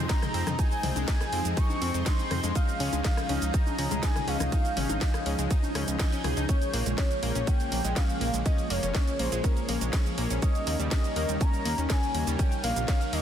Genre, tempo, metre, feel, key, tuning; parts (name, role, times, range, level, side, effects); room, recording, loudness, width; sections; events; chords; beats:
progressive house; 122 BPM; 4/4; straight; Bb dorian; A4 = 441 Hz
warm velvety synth lead; melody; 0.0-13.2 s; Bb4 to Db6; -34 LUFS; equal; chorus, ping-pong delay
airy breathy pad; sustained chords; 0.0-13.2 s; C3 to Ab5; -38 LUFS; right 1 dB; chorus, sidechain pumping
analog pluck; arpeggios; 0.0-13.2 s; G3 to Eb5; -35 LUFS; left 2 dB; chorus, sidechain pumping, digital delay
soft supersaw; stabs; 0.0-13.2 s; F3 to Ab5; -36 LUFS; left 2 dB; sidechain pumping, digital delay
fat analog bass; bass; 0.0-13.2 s; F1 to F2; -30 LUFS; equal; sidechain pumping
backwards swelling texture; texture; 0.0-6.5 s; G6; -44 LUFS; right 2 dB; built-in reverb, sidechain pumping
electronic kick drum; drums; 0.1-13.0 s; -26 LUFS; equal
house drum kit; drums; 0.1-13.2 s; hi-hat, ride cymbal, shaker, snare drum; -35 LUFS; right 2 dB
punchy analog drum machine; percussion; 0.1-6.5 s; congas, rim click, toms; -36 LUFS; left 2 dB; sidechain pumping on perc, soft clipping on snare, sidechain pumping on snare, sidechain pumping on toms
light reverb; dense, heavily limited modern master; -25 LUFS; side -9 dB against mid
0.0-6.5 A section; 6.5-13.2 A section
drop 0.0-6.5, 6.5-13.2
0.0 Fm7; 2.6 Dbadd9; 6.5 Bbm7; 10.4 Eb7
0.10 | 0.59 1.08 1.57 2.06 | 2.56 3.05 3.54 4.03 | 4.52 5.01 5.51 6.00 | 6.49 6.98 7.47 7.96 | 8.46 8.95 9.44 9.93 | 10.42 10.92 11.41 11.90 | 12.39 12.88